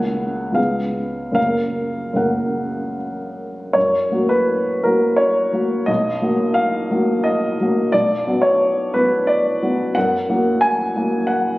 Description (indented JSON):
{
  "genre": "classical, romantic character piece for solo piano",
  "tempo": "71-93 BPM",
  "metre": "3/4",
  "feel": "rubato",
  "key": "F# major",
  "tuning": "A4 = 440 Hz",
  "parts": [
    { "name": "warm baby grand piano", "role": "solo", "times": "0.0-11.6 s", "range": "B1 to G#5", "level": "-16 LUFS", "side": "equal", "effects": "none" }
  ],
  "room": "wet recital hall reverb, RT60 1.4 s",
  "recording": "recorded on a phone in the room, club reverb, compression",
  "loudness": "-16 LUFS",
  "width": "side -18 dB against mid",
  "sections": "0.0-3.8 A section; 3.8-11.6 B section",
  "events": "none",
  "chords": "0.0 F#/C#; 0.6 C#7; 1.4 F#; 5.9 Bmaj7; 7.9 Bm; 10.0 F#",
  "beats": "0.57 | 1.37 2.19 2.97 | 3.76 4.49 5.19 | 5.89 6.57 7.26 | 7.93 8.60 9.28 | 9.96 10.63 11.29"
}